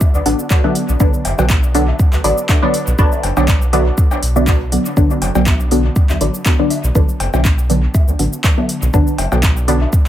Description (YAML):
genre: dub techno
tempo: 121 BPM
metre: 4/4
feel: swing 55% on 16ths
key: B minor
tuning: A4 = 440 Hz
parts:
  - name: deep house drum kit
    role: drums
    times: 0.0-10.0 s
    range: handclaps, hi-hat, shaker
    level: -23 LUFS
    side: equal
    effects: studio reverb, dub echo
  - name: electronic kick drum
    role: drums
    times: 0.0-10.0 s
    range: none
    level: -14 LUFS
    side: equal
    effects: studio reverb
  - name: woodblock and cowbell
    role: percussion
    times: 0.0-9.9 s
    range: none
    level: -26 LUFS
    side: left 4 dB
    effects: overdrive, sidechain pumping on perc, studio reverb, dub echo
  - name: round analog bass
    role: bass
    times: 0.1-9.9 s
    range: F#1 to D2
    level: -17 LUFS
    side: equal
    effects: sidechain pumping
  - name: filtered dub chord stab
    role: stabs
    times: 0.3-9.8 s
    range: D3 to D4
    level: -17 LUFS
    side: equal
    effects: chorus, phaser, sidechain pumping, dub echo
room: light reverb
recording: none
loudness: -12 LUFS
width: side -12 dB against mid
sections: 0.0-10.1 A section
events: none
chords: 0.0 Bm